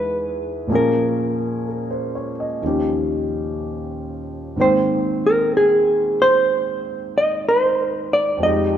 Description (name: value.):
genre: jazz ballad.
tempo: 62 BPM.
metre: 4/4.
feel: swing 67% on 8ths.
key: unclear.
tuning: A4 = 438 Hz.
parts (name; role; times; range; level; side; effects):
hollow-body jazz guitar; melody; 0.0-8.8 s; Ab4 to Eb5; -17 LUFS; right 1 dB; none.
warm baby grand piano; accompaniment; 0.0-8.8 s; Eb2 to G5; -22 LUFS; equal; none.
room: wet echo chamber reverb, RT60 2.2 s.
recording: heard from further back in the room.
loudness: -17 LUFS.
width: side -10 dB against mid.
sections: 0.0-8.8 A section.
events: none.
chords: 0.0 Emaj7; 0.7 Bbm7; 2.6 Eb7; 4.6 Abmaj9.